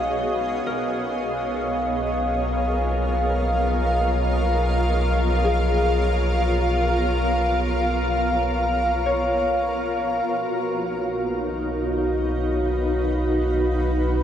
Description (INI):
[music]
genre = ambient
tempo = free time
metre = none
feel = none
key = B lydian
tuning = A4 = 440 Hz
[part]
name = granular cloud pad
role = sustained chords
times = 0.0-14.2 s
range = B3 to E#5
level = -24 LUFS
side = right 1 dB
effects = built-in reverb, shimmer reverb
[part]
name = concert harp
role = arpeggios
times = 0.0-11.0 s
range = G#4 to F#5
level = -31 LUFS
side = left 3 dB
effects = shimmer reverb, diffuse ambient delay
[part]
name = round analog bass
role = bass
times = 0.0-14.2 s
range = B1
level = -25 LUFS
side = equal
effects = none
[part]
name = glass harmonica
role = texture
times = 0.0-14.2 s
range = F#4 to E#5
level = -26 LUFS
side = left 1 dB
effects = shimmer reverb
[part]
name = warm velvety synth lead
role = melody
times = 10.3-14.2 s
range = B4 to E#5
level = -42 LUFS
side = equal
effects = none
[sound]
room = wet huge ambient reverb, RT60 8.0 s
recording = cassette tape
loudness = -20 LUFS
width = side -9 dB against mid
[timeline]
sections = 0.0-10.3 A section; 10.3-14.2 B section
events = none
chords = 0.0 B6; 10.3 B